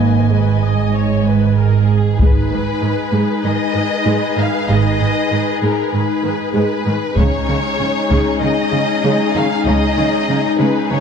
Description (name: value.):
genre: cinematic, epic orchestral film score.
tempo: 96 BPM.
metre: 4/4.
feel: straight.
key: G# minor.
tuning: A4 = 440 Hz.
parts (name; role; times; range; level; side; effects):
dark symphonic violin section; second line; 0.0-11.0 s; D#4 to G#5; -23 LUFS; left 4 dB; none.
warm symphonic viola section; accompaniment; 0.0-11.0 s; C#3 to D#5; -23 LUFS; right 1 dB; none.
dark French horn section; sustained chords; 0.0-11.0 s; G#3 to D#4; -21 LUFS; left 5 dB; none.
warm chamber cello section; bass; 0.0-11.0 s; G#2 to C#3; -20 LUFS; right 4 dB; none.
warm symphonic double bass section; bass; 0.0-9.9 s; G#1 to C#2; -17 LUFS; right 7 dB; none.
warm symphonic violin section; melody; 1.6-11.0 s; G#4 to E#5; -21 LUFS; left 3 dB; none.
taiko ensemble; drums; 2.2-3.4, 7.2-8.4 s; none; -17 LUFS; left 1 dB; none.
room: moderate scoring stage reverb, RT60 1.7 s.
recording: dark, warm production.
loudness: -14 LUFS.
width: side -6 dB against mid.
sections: 0.0-2.2 A section; 2.2-11.0 A section.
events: none.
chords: 0.0 G#m; 7.2 C#sus2.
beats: 0.33 0.95 1.57 | 2.19 2.82 3.44 4.06 | 4.68 5.31 5.93 6.55 | 7.17 7.80 8.42 9.04 | 9.66 10.29 10.91.